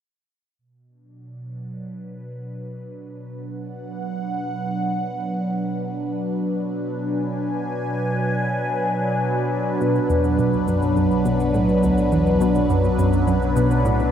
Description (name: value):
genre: ambient, sequencer-driven space music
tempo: 104 BPM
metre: 4/4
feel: straight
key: B dorian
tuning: A4 = 438 Hz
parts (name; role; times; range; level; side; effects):
- phased analog pad; sustained chords; 1.3-14.1 s; B2 to G#5; -21 LUFS; equal; phaser, chorus
- tight sequenced synth; riff; 9.8-14.0 s; D2 to B2; -21 LUFS; equal; chorus, analog delay
- warm sub bass; bass; 9.8-14.1 s; B1; -27 LUFS; equal; none
- cabasa and bongos; percussion; 9.8-14.1 s; none; -48 LUFS; right 2 dB; analog delay
room: wet lush hall reverb, RT60 2.8 s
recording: dreamy mix soaked in reverb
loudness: -19 LUFS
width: side -9 dB against mid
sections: 0.6-9.8 A section; 9.8-14.1 B section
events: filter sweep on analog synth pad 0.6-9.8; fade-in on drum 9.8-14.1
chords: 0.6 Bm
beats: | 0.58 1.16 1.74 2.31 | 2.89 3.47 4.04 4.62 | 5.20 5.78 6.35 6.93 | 7.51 8.08 8.66 9.24 | 9.81 10.39 10.97 11.54 | 12.12 12.70 13.28 13.85